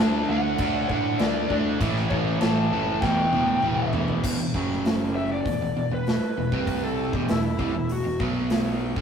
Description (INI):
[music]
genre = hard rock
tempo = 99 BPM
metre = 4/4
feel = straight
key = E minor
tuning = A4 = 439 Hz
[part]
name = lead guitar through a small cranked amp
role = melody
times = 0.0-8.2 s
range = E4 to A5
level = -28 LUFS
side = left 2 dB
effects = overdrive
[part]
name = cranked stack guitar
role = riff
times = 0.0-9.0 s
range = E2 to D4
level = -34 LUFS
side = left 5 dB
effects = overdrive
[part]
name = distorted electric guitar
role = riff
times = 0.0-4.2 s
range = E2 to D4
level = -33 LUFS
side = left 1 dB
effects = overdrive
[part]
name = overdriven semi-hollow guitar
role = riff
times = 0.0-9.0 s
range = E2 to D4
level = -27 LUFS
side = right 3 dB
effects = none
[part]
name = fuzz fingered electric bass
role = bass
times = 0.0-9.0 s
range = E1 to A2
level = -32 LUFS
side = equal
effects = overdrive
[part]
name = big rock drum kit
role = drums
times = 0.6-9.0 s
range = crash cymbal, hi-hat, kick drum, snare drum, toms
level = -27 LUFS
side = equal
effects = none
[sound]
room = moderate small room reverb, RT60 0.6 s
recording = rough rehearsal-room recording, tube saturation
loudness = -22 LUFS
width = side -7 dB against mid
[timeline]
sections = 0.0-4.2 A section; 4.2-9.0 B section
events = drum fill 3.0-4.2; lead electric guitar solo 4.2-9.0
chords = 0.0 D; 1.8 A5; 3.0 Em; 4.2 E5; 4.5 F#5; 5.5 E5; 6.5 C5; 7.1 Em; 8.2 B5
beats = 0.60 1.21 | 1.81 2.42 3.03 3.64 | 4.25 4.85 5.46 6.07 | 6.68 7.29 7.90 8.51